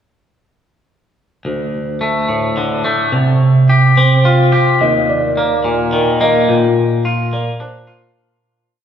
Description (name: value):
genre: post-rock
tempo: 107 BPM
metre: 3/4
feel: straight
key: D minor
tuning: A4 = 442 Hz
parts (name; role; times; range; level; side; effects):
- twangy electric guitar; arpeggios; 1.4-8.2 s; D2 to G4; -12 LUFS; equal; none
- felt-muted upright piano; arpeggios; 4.8-8.2 s; C5 to Eb5; -18 LUFS; right 2 dB; none
room: wet concert hall reverb, RT60 2.3 s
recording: recorded in a church or concert hall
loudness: -11 LUFS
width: side -8 dB against mid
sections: 1.4-8.2 A section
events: fade-out 6.5-8.2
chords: 1.4 D5; 3.1 Csus4; 4.8 Eb5; 6.5 Bbadd9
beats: | 1.45 2.01 2.57 | 3.13 3.69 4.25 | 4.82 5.38 5.93 | 6.49 7.05 7.61